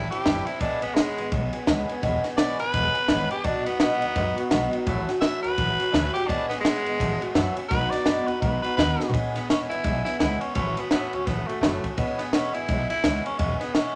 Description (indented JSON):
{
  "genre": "rockabilly",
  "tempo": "169 BPM",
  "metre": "4/4",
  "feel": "swing 60% on 8ths",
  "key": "E major",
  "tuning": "A4 = 440 Hz",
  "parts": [
    { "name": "raspy tenor saxophone", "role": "melody", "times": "0.0-14.0 s", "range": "G#3 to E5", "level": "-30 LUFS", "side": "equal", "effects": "none" },
    { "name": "picked swing-style acoustic guitar", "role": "accompaniment", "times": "0.0-14.0 s", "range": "A2 to A4", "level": "-30 LUFS", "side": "equal", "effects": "none" },
    { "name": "upright bass", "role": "bass", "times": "0.0-13.9 s", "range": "E1 to F#2", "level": "-34 LUFS", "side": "equal", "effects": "none" },
    { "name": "compact cocktail drum kit", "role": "drums", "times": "0.1-13.8 s", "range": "kick drum, ride cymbal, snare drum, toms", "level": "-29 LUFS", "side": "equal", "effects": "none" }
  ],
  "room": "light reverb",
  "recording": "none",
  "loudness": "-25 LUFS",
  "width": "mono",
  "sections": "0.0-9.1 A section; 9.1-14.0 B section",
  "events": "tenor saxophone solo 0.0-9.1; drum fill 9.0",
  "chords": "0.0 Am7; 0.6 E6; 3.4 B6; 4.9 A6; 6.3 E6; 7.0 A6; 7.7 B6; 9.1 E6; 10.6 A6; 12.0 E6",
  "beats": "0.25 | 0.61 0.96 1.32 1.67 | 2.03 2.38 2.74 3.09 | 3.45 3.80 4.16 4.51 | 4.87 5.22 5.58 5.94 | 6.29 6.65 7.00 7.36 | 7.71 8.07 8.42 8.78 | 9.13 9.49 9.85 10.20 | 10.56 10.91 11.27 11.62 | 11.98 12.33 12.69 13.04 | 13.39 13.75"
}